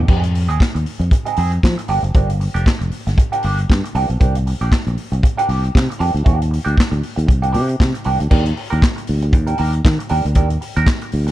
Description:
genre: disco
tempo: 117 BPM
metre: 4/4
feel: swing 56% on 16ths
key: unclear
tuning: A4 = 439 Hz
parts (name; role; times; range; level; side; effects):
- fingered electric bass; bass; 0.0-11.3 s; F1 to F3; -18 LUFS; equal; none
- clean electric guitar; accompaniment; 0.1-11.3 s; F3 to Bb4; -23 LUFS; right 4 dB; wah
- vintage drum kit; drums; 0.1-11.3 s; crash cymbal, handclaps, hi-hat, kick drum, snare drum; -17 LUFS; equal; none
room: small room ambience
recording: dark, warm production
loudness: -14 LUFS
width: side -15 dB against mid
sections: 0.0-8.3 A section; 8.3-11.3 B section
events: none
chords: 0.1 Fm7; 1.9 Gm7; 3.9 C9sus4; 6.3 Ebmaj9; 7.3 C9sus4; 8.3 Ebmaj7

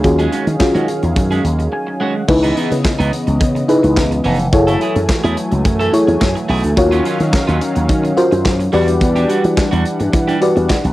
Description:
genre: early-eighties boogie funk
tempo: 107 BPM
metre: 4/4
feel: straight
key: unclear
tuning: A4 = 441 Hz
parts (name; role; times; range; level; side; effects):
- mellow FM electric piano; accompaniment; 0.0-10.8 s; C#4 to G#5; -16 LUFS; left 1 dB; chorus, plate reverb
- brassy analog pad; sustained chords; 0.0-10.9 s; C#3 to G#5; -20 LUFS; equal; chorus, plate reverb
- electric guitar at the edge of break-up; riff; 0.0-10.9 s; E3 to A4; -22 LUFS; right 4 dB; wide subtle chorus
- slap bass with an envelope filter; bass; 0.0-10.9 s; E#1 to E3; -17 LUFS; equal; none
- modern studio drum kit; drums; 0.0-10.9 s; crash cymbal, handclaps, hi-hat, kick drum, snare drum; -19 LUFS; equal; cassette tape
room: light reverb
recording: home recording on cassette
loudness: -12 LUFS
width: side -16 dB against mid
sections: 0.0-2.3 A section; 2.3-10.9 B section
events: FM electric piano fill 1.4-2.3; break 1.7-2.3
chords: 0.0 D#m11; 2.3 C#m9; 4.5 F#m9; 6.8 D#m9; 8.7 Em9

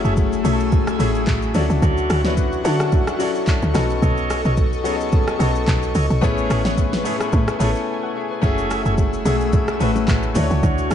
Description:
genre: amapiano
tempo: 109 BPM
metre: 4/4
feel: swing 55% on 16ths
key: F# minor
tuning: A4 = 442 Hz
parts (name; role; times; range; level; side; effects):
- clear grand piano; accompaniment; 0.0-10.9 s; E#3 to G#5; -23 LUFS; left 4 dB; none
- airy breathy pad; sustained chords; 0.0-10.9 s; A3 to E6; -26 LUFS; left 2 dB; chorus
- bright tonewheel organ; stabs; 0.0-10.9 s; D4 to E5; -29 LUFS; right 3 dB; stopped rotary speaker, ping-pong delay
- woody log drum bass; bass; 0.0-10.9 s; F#1 to D3; -21 LUFS; right 1 dB; none
- smooth R&B drum kit; drums; 0.0-10.9 s; handclaps, hi-hat, kick drum, rim click, shaker, snare drum; -21 LUFS; equal; none
- congas and bongos; percussion; 8.4-10.8 s; none; -28 LUFS; right 3 dB; none
room: light reverb, digital ambience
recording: dark, warm production, nothing above 10.5 kHz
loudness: -17 LUFS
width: side -9 dB against mid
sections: 0.0-10.9 A section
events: break 7.9-8.4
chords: 0.0 F#m9; 1.5 Dmaj7; 3.8 B9; 6.2 Amaj9; 8.4 F#m9; 10.4 Dmaj7

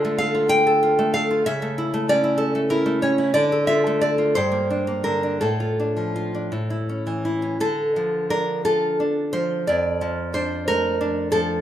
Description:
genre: romantic piece for solo classical guitar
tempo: 54-66 BPM (dotted quarters)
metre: 6/8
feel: rubato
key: D minor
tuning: A4 = 440 Hz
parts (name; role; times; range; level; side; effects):
- nylon-string guitar; solo; 0.0-11.6 s; F2 to G5; -19 LUFS; equal; none
room: moderate recital hall reverb, RT60 1.4 s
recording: minimal, uncompressed stereo recording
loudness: -19 LUFS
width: side -11 dB against mid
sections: 0.0-7.6 A section; 7.6-11.6 B section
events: none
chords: 0.0 Dm; 1.5 A/C#; 3.4 Dm; 4.4 Gm; 5.4 Dm/A; 6.5 A; 7.6 Dm; 9.7 Dm/F

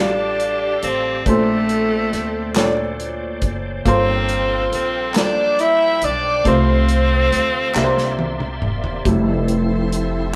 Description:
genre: slow gospel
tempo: 46 BPM (dotted quarters)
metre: 6/8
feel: straight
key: F major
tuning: A4 = 440 Hz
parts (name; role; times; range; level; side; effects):
- mellow horn section; melody; 0.0-8.6 s; C4 to E5; -25 LUFS; equal; none
- raspy tenor saxophone; melody; 0.0-8.6 s; A3 to E4; -24 LUFS; equal; none
- warm upright piano; accompaniment; 0.0-10.4 s; G2 to E5; -24 LUFS; equal; none
- bright tonewheel organ; sustained chords; 0.0-10.3 s; F3 to C6; -31 LUFS; equal; fast rotary speaker, chorus vibrato
- upright bass; bass; 0.0-10.3 s; E1 to D2; -26 LUFS; equal; none
- warm soul drum kit; drums; 0.4-10.1 s; hi-hat, kick drum, snare drum, toms; -26 LUFS; equal; none
- group handclap; percussion; 2.6-8.2 s; none; -29 LUFS; equal; none
- warm studio string section; sustained chords; 9.1-10.4 s; C5 to C6; -35 LUFS; equal; none
room: moderate studio reverb, RT60 0.7 s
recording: band playing live in one room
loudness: -18 LUFS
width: mono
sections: 0.0-9.1 A section; 9.1-10.4 B section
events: drum fill 7.8-9.1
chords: 0.0 F69; 1.3 Bbmaj9; 3.9 Gm11; 6.5 F/C; 7.8 C9; 9.1 Fmaj7

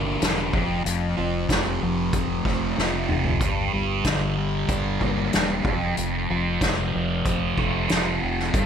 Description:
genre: psychedelic rock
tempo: 94 BPM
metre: 4/4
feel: straight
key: unclear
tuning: A4 = 440 Hz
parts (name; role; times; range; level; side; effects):
- thick fuzz guitar; riff; 0.0-8.7 s; F2 to D4; -24 LUFS; equal; distortion, phaser
- fingered electric bass; bass; 0.0-8.7 s; E1 to G1; -29 LUFS; equal; none
- soft-mallet drum kit; drums; 0.2-8.7 s; hi-hat, kick drum, snare drum, toms; -26 LUFS; equal; none
room: light reverb, studio ambience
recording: none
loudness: -21 LUFS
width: side -8 dB against mid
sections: 0.0-8.7 A section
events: drum fill 2.8-3.4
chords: 0.0 Gm; 0.5 F; 3.4 Gm; 5.7 F

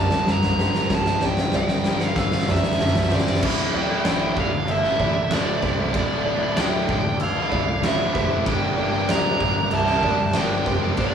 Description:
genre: post-rock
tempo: 95 BPM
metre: 4/4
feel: straight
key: unclear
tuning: A4 = 439 Hz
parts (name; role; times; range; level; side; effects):
- dark smooth lead guitar; melody; 0.0-11.1 s; D5 to Bb5; -25 LUFS; right 3 dB; overdrive
- clear studio string section; sustained chords; 0.0-11.1 s; G3 to D6; -34 LUFS; right 1 dB; none
- felt-muted upright piano; arpeggios; 0.0-11.0 s; C5 to E6; -32 LUFS; right 2 dB; none
- twangy electric guitar; arpeggios; 0.0-3.4 s; G2 to G4; -34 LUFS; left 1 dB; none
- sludgy distorted guitar; riff; 0.0-11.1 s; D2 to G4; -28 LUFS; left 8 dB; overdrive
- fuzz picked electric bass; bass; 0.0-11.1 s; D1 to D2; -28 LUFS; equal; overdrive
- oversized low-tuned drum kit; drums; 0.1-11.1 s; crash cymbal, kick drum, snare drum, toms; -23 LUFS; equal; none
- overdriven electric guitar; riff; 3.4-11.1 s; D2 to G4; -27 LUFS; right 5 dB; none
room: moderate recital hall reverb, RT60 1.6 s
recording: recorded in a church or concert hall, studio reverb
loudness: -19 LUFS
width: side -7 dB against mid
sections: 0.0-3.4 A section; 3.4-11.1 B section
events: build-up 0.0-3.4; drum fill 0.0-3.4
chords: 0.0 Gm; 3.4 Dsus2; 8.5 Gm

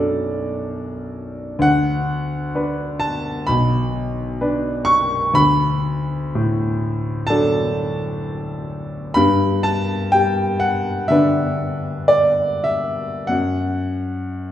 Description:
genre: classical, romantic nocturne for solo piano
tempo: 46-69 BPM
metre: 4/4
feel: rubato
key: unclear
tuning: A4 = 439 Hz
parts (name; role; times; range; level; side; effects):
- clear grand piano; solo; 0.0-14.5 s; B1 to C#6; -18 LUFS; equal; none
room: wet recital hall reverb, RT60 1.7 s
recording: heard from further back in the room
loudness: -17 LUFS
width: side -11 dB against mid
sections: 0.0-14.5 A section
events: none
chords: 0.0 Bm7; 1.6 Bm/D; 3.5 Bm; 5.4 D; 9.2 G; 13.3 N.C.

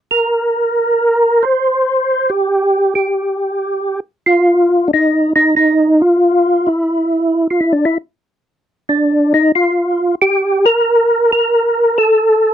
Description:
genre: jazz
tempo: 91 BPM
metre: 4/4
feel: swing 68% on 8ths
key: unclear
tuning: A4 = 440 Hz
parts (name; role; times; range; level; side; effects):
- percussive tonewheel organ; solo; 0.1-12.5 s; D4 to C5; -11 LUFS; equal; slow rotary speaker, chorus vibrato
room: light reverb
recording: dry, close 1970s-style studio recording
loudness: -12 LUFS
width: side -10 dB against mid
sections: 0.0-12.5 A section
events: none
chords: none

